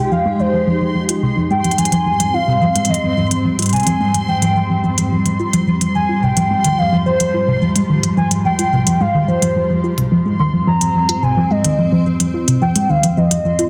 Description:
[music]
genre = IDM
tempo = 108 BPM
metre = 4/4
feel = straight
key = unclear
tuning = A4 = 436 Hz
[part]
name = warbly nostalgic lead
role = melody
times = 0.0-13.7 s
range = C5 to C6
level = -22 LUFS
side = equal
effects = chorus, tremolo, cassette tape, digital delay
[part]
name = granular cloud pad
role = sustained chords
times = 0.0-13.7 s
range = Ab2 to G4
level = -23 LUFS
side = equal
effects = built-in reverb
[part]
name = warbly dusty pluck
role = arpeggios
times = 0.0-13.7 s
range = C3 to F4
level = -19 LUFS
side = equal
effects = chorus, tape echo
[part]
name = bubbling stepped-filter texture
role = texture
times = 0.0-13.7 s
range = C6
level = -31 LUFS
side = equal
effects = chorus, built-in reverb
[part]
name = electronic hi-hat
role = drums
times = 1.1-13.7 s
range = none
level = -21 LUFS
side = equal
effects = small room ambience
[sound]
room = moderate lush hall reverb, RT60 1.6 s, digital ambience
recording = dense, heavily limited modern master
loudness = -16 LUFS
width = mono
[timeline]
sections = 0.0-13.7 A section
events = filter sweep on ambient pad 0.0-13.7; filter sweep on synth pluck 0.0-13.7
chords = 0.0 Fmadd9; 1.2 Abmaj7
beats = 0.12 0.67 | 1.23 1.78 2.34 2.90 | 3.45 4.01 4.56 5.12 | 5.67 6.23 6.78 7.34 | 7.89 8.45 9.01 9.56 | 10.12 10.67 11.23 11.78 | 12.34 12.89 13.45

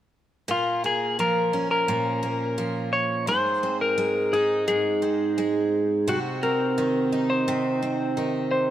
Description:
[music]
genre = pop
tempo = 86 BPM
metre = 4/4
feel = straight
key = Bb minor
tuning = A4 = 440 Hz
[part]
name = clean lap steel guitar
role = melody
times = 0.5-8.7 s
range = F4 to Db5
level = -25 LUFS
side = left 2 dB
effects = none
[part]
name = picked twelve-string acoustic guitar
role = accompaniment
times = 0.5-8.7 s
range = Ab2 to Ab4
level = -24 LUFS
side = right 2 dB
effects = none
[sound]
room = light reverb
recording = none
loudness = -22 LUFS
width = side -11 dB against mid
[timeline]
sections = 0.5-8.7 A section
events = none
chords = 0.5 Bbm; 3.3 Ab; 6.1 Cdim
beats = | 0.48 1.18 1.88 2.58 | 3.27 3.97 4.67 5.37 | 6.07 6.77 7.47 8.17

